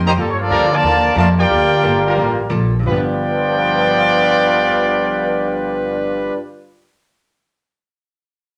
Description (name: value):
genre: jazz, big band swing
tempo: 179 BPM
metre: 4/4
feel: swing 64% on 8ths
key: unclear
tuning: A4 = 442 Hz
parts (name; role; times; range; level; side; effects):
- archtop guitar, miked and amplified; accompaniment; 0.0-6.5 s; G2 to A4; -29 LUFS; equal; none
- upright bass; bass; 0.0-6.3 s; G1 to G2; -22 LUFS; equal; none
- clear trumpet section; melody; 0.1-6.3 s; Bb3 to Bb5; -18 LUFS; equal; none
- clear trombone section; second line; 0.1-6.3 s; G2 to G4; -24 LUFS; equal; none
- bright trombone section; sustained chords; 0.2-6.3 s; G3 to B4; -24 LUFS; equal; none
room: wet studio reverb, RT60 0.8 s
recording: none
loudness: -16 LUFS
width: mono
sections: 0.0-2.8 A section; 2.8-5.5 B section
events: none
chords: 0.2 Gm9; 2.8 G7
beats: | 0.17 0.50 0.83 1.17 | 1.50 1.84 2.17 2.51 | 2.84 3.18 3.51 3.85 | 4.18 4.52 4.86 5.19